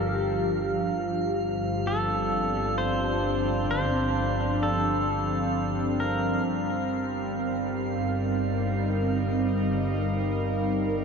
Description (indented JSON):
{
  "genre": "ambient",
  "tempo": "65 BPM",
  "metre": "3/4",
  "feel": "straight",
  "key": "unclear",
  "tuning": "A4 = 440 Hz",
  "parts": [
    { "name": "pedal steel guitar", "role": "melody", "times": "0.0-6.4 s", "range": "A4 to C5", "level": "-31 LUFS", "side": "equal", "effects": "ping-pong delay" },
    { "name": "warbly tape-like pad", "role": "sustained chords", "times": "0.0-11.0 s", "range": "F3 to A5", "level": "-28 LUFS", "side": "equal", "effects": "chorus, built-in reverb, phaser" },
    { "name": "muted felt-like synth keys", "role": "arpeggios", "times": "0.0-7.4 s", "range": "C4 to A5", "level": "-38 LUFS", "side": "left 2 dB", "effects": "none" },
    { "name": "warm symphonic double bass section", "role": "bass", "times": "0.0-11.0 s", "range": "G1", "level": "-31 LUFS", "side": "equal", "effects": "none" },
    { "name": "overtone-sweeping drone", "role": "drone", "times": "0.0-11.0 s", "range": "G3", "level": "-36 LUFS", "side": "equal", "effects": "chorus, built-in reverb" },
    { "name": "drifting glass-harmonics texture", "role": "texture", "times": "0.0-11.0 s", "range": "F5", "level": "-35 LUFS", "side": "right 4 dB", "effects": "chorus, built-in reverb" }
  ],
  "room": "wet huge ambient reverb, RT60 8.0 s",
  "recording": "dark, warm production",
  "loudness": "-24 LUFS",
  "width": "side -5 dB against mid",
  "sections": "0.0-11.0 A section",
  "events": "none",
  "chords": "0.0 Dm7/G; 6.4 Cm7/G"
}